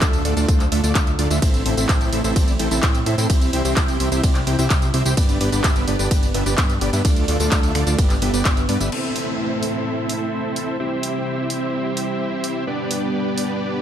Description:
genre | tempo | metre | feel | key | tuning
EDM, festival progressive house | 128 BPM | 4/4 | straight | A minor | A4 = 440 Hz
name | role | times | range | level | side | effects
lush unison pad | sustained chords | 0.0-13.8 s | G2 to C5 | -27 LUFS | right 1 dB | chorus, sidechain pumping
dense compressed supersaw | riff | 0.0-13.8 s | A3 to G5 | -23 LUFS | equal | cassette tape, sidechain pumping, low-pass filter, ping-pong delay
fat analog bass | bass | 0.0-8.9 s | G1 to A2 | -23 LUFS | equal | sidechain pumping
electronic kick drum | drums | 0.0-8.5 s | none | -18 LUFS | equal | overdrive
house drum kit | drums | 0.0-13.5 s | crash cymbal, finger snaps, handclaps, hi-hat, ride cymbal, tambourine | -25 LUFS | equal | overdrive
downlifter | sound effects | 8.9-12.7 s | none | -33 LUFS | left 1 dB | none
room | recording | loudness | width
light reverb, digital ambience | none | -17 LUFS | side -10 dB against mid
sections
0.0-8.9 A section; 8.9-13.8 B section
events
drop 0.0-8.9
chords
0.0 Dm; 1.4 Am; 3.3 C; 5.2 G; 7.0 Dm; 8.0 G; 8.9 Am; 10.8 C; 12.7 G

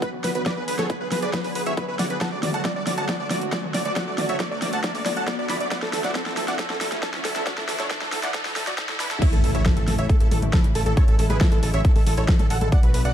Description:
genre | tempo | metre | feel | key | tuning
uplifting trance | 137 BPM | 4/4 | straight | A major | A4 = 439 Hz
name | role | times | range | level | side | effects
dense compressed supersaw | melody | 0.0-13.1 s | D4 to B5 | -28 LUFS | right 1 dB | sidechain pumping, ping-pong delay
lush unison pad | sustained chords | 0.0-13.1 s | C#3 to G#4 | -32 LUFS | equal | chorus, sidechain pumping
big-room dance drum kit | drums | 0.0-13.1 s | crash cymbal, hi-hat, snare drum, toms | -28 LUFS | left 1 dB | overdrive
electronic kick drum | drums | 0.0-12.8 s | none | -20 LUFS | equal | overdrive, high-pass filter on kick
riser and impact | sound effects | 0.0-11.0 s | none | -31 LUFS | equal | none
plucky analog bass | bass | 0.1-13.1 s | D1 to D2 | -29 LUFS | equal | sidechain pumping, high-pass filter
warm grand piano | second line | 9.2-13.1 s | A4 to F#5 | -35 LUFS | right 1 dB | none
room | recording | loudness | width
light reverb, digital ambience | dark, warm production, high-pass filter | -20 LUFS | side -10 dB against mid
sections
0.0-9.2 A section; 9.2-13.1 B section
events
build-up 0.0-9.2; drum fill 0.0-9.2; riser 0.0-9.2; filter sweep 0.0-9.2; drop 9.2-13.1; impact 9.2-11.0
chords
0.0 Bm; 2.2 D; 9.2 A

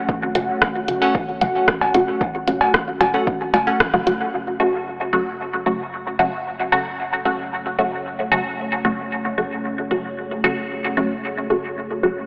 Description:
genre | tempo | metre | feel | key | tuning
dub techno | 113 BPM | 4/4 | straight | F# minor | A4 = 440 Hz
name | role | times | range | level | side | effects
deep dark ambient pad | sustained chords | 0.0-12.3 s | A3 to F#5 | -29 LUFS | equal | chorus, built-in reverb, sidechain pumping
electronic kick drum | drums | 0.1-3.9 s | none | -29 LUFS | equal | small room ambience
woodblock and cowbell | percussion | 0.1-4.2 s | none | -25 LUFS | equal | sidechain pumping on perc, small room ambience, dub echo
filtered dub chord stab | stabs | 0.4-12.2 s | C#3 to F#4 | -23 LUFS | equal | phaser, sidechain pumping, dub echo
warm sub bass | bass | 0.4-12.3 s | E1 to F#1 | -45 LUFS | equal | sidechain pumping
deep house drum kit | drums | 0.4-4.2 s | hi-hat, rim click | -24 LUFS | equal | low-pass filter on hats, small room ambience, low-pass filter on snare, dub echo
wavetable chord stab | riff | 1.0-3.8 s | C#4 to F#5 | -28 LUFS | equal | sidechain pumping, dub echo
room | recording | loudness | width
moderate lush hall reverb, RT60 2.5 s | dry, gritty hardware recording, AM radio sound | -21 LUFS | mono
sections
0.0-4.3 A section; 4.3-12.3 B section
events
filter sweep on synth stab 0.0-4.3; band accent 3.8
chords
0.0 F#m

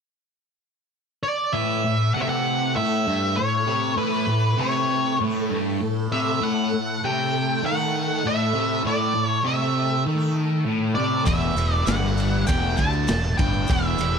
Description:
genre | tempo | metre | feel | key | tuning
psychedelic rock | 99 BPM | 4/4 | straight | unclear | A4 = 440 Hz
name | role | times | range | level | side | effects
octave-fuzz lead guitar | melody | 1.2-14.2 s | B4 to A5 | -25 LUFS | equal | distortion, tape echo
phased string machine | sustained chords | 1.8-14.2 s | A3 to A4 | -34 LUFS | right 2 dB | ensemble chorus, phaser
fuzz guitar | riff | 1.5-14.2 s | E2 to D#3 | -24 LUFS | left 1 dB | distortion, phaser
tanpura | drone | 1.5-14.2 s | A2 to A3 | -32 LUFS | equal | none
fuzz fingered electric bass | bass | 11.3-14.2 s | E1 to D2 | -24 LUFS | equal | overdrive
vintage drum kit | drums | 11.3-14.1 s | kick drum, ride cymbal, snare drum | -26 LUFS | equal | none
maracas | percussion | 11.3-14.1 s | none | -40 LUFS | left 12 dB | none
room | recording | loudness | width
light reverb, studio reverb | none | -20 LUFS | side -6 dB against mid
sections
0.0-1.5 A section; 1.5-14.2 B section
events
none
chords
0.0 N.C.; 1.5 A5; 11.3 Em7

